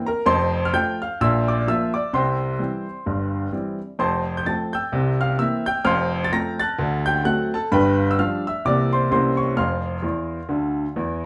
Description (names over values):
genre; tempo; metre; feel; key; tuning
jazz, stride piano; 129 BPM; 4/4; swing 58% on 8ths; F major; A4 = 440 Hz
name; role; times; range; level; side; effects
clear baby grand piano; solo; 0.0-11.3 s; F1 to Bb6; -22 LUFS; equal; none
room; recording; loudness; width
wet studio ambience, RT60 0.5 s; heard from further back in the room, nothing above 10.8 kHz; -22 LUFS; mono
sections
0.0-11.3 A section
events
grand piano fill 10.0-11.3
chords
0.3 F; 1.2 Bb; 2.1 C; 4.0 F; 4.9 C7; 5.8 F; 6.8 D7; 7.7 G7; 8.6 C7; 9.1 C7b9; 9.6 F5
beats
| 0.27 0.73 1.19 1.66 | 2.12 2.59 3.05 3.52 | 3.98 4.45 4.91 5.38 | 5.84 6.31 6.78 7.24 | 7.71 8.17 8.64 9.10 | 9.57 10.04 10.50 10.97